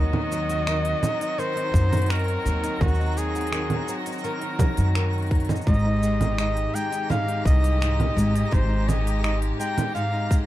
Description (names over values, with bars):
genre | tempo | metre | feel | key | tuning
folktronica | 84 BPM | 4/4 | straight | Ab major | A4 = 440 Hz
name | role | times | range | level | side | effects
clear flugelhorn | melody | 0.0-10.4 s | Gb4 to G5 | -29 LUFS | equal | vintage 12-bit sampler grit, tape echo
clear string quartet | sustained chords | 0.0-10.5 s | C3 to G4 | -35 LUFS | equal | none
flamenco guitar | arpeggios | 0.0-10.5 s | Ab2 to G4 | -30 LUFS | left 1 dB | tape echo
upright bass | bass | 0.0-9.5 s | Ab1 to Gb2 | -23 LUFS | equal | none
twinkling granular texture | texture | 0.0-10.5 s | Bb5 | -38 LUFS | right 1 dB | built-in reverb
organic electronic drum kit | drums | 0.1-10.5 s | congas, finger snaps, hi-hat, shaker | -28 LUFS | right 2 dB | none
electronic kick drum | drums | 1.7-10.5 s | none | -21 LUFS | equal | none
room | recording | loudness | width
little or no reverb | dark, warm production | -21 LUFS | side -14 dB against mid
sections
0.0-10.5 A section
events
none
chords
0.0 Ebm; 5.7 Abmaj7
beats
0.67 1.38 2.10 | 2.81 3.52 4.24 4.95 | 5.67 6.38 7.09 7.81 | 8.52 9.24 9.95